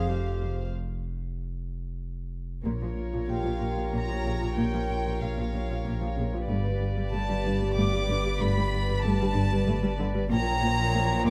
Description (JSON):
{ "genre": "cinematic, suspense film score", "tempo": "94 BPM", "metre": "3/4", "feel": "straight", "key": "unclear", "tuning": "A4 = 439 Hz", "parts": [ { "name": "warm chamber violin section", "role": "melody", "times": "0.0-11.3 s", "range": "F5 to D6", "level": "-36 LUFS", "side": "equal", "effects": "none" }, { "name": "mellow clarinet", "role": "second line", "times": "0.0-0.7 s", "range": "G4 to Ab4", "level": "-39 LUFS", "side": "equal", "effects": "none" }, { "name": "warm studio violin section", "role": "second line", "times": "0.0-11.3 s", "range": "Bb4 to F5", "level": "-38 LUFS", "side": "equal", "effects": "none" }, { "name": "dark studio double bass section", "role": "bass", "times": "0.0-11.3 s", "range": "F1 to Bb1", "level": "-37 LUFS", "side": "equal", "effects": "none" }, { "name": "warm symphonic cello section", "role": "bass", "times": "0.0-11.3 s", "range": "F2 to Bb2", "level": "-36 LUFS", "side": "equal", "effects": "none" }, { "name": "saturated sub bass", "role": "drone", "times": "0.0-11.3 s", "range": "F1 to Bb1", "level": "-35 LUFS", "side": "equal", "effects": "none" }, { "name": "warm symphonic cello section", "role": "riff", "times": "0.1-11.3 s", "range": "F2 to Bb3", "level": "-34 LUFS", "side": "equal", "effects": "none" }, { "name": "dark symphonic viola section", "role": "accompaniment", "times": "2.6-11.3 s", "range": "Db3 to G4", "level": "-36 LUFS", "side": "equal", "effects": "none" }, { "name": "vibraphone with medium hard mallets", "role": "texture", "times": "3.3-11.3 s", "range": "G4 to G5", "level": "-40 LUFS", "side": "equal", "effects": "none" } ], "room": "light reverb", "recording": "close, detailed microphones", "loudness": "-28 LUFS", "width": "mono", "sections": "0.0-2.7 A section; 2.7-11.3 B section", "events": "break 0.7-2.7", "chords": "0.0 F5; 2.7 Bbm; 6.5 Gadd9; 10.3 Bbm" }